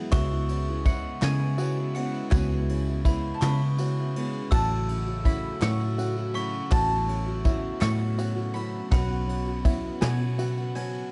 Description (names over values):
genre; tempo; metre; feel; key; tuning
indie folk with a building arrangement; 55 BPM (dotted quarters); 6/8; straight; unclear; A4 = 440 Hz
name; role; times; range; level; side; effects
glockenspiel with hard plastic mallets; second line; 0.0-11.1 s; B5 to E6; -41 LUFS; equal; none
felt-muted upright piano; accompaniment; 0.0-11.1 s; A1 to G#5; -40 LUFS; equal; none
picked twelve-string acoustic guitar; accompaniment; 0.0-11.1 s; A2 to G#4; -39 LUFS; equal; none
warm chamber string section; sustained chords; 0.0-11.1 s; C#3 to F#4; -42 LUFS; equal; none
open-back banjo; arpeggios; 0.0-11.1 s; E4 to F#4; -38 LUFS; equal; slapback echo
bowl-back mandolin; melody; 0.1-11.1 s; E5 to C#6; -37 LUFS; equal; none
fingered electric bass; bass; 0.1-11.0 s; A1 to C#3; -30 LUFS; equal; none
soft brush drum kit; drums; 0.1-10.9 s; kick drum, ride cymbal, snare drum; -29 LUFS; equal; none
group handclap; percussion; 0.1-10.2 s; none; -44 LUFS; equal; none
tambourine; percussion; 0.1-11.0 s; none; -52 LUFS; equal; none
room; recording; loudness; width
small room ambience; dark, warm production, nothing above 10.8 kHz; -26 LUFS; mono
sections
0.0-11.1 A section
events
none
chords
0.1 C#m7; 4.5 A6; 8.9 Bsus2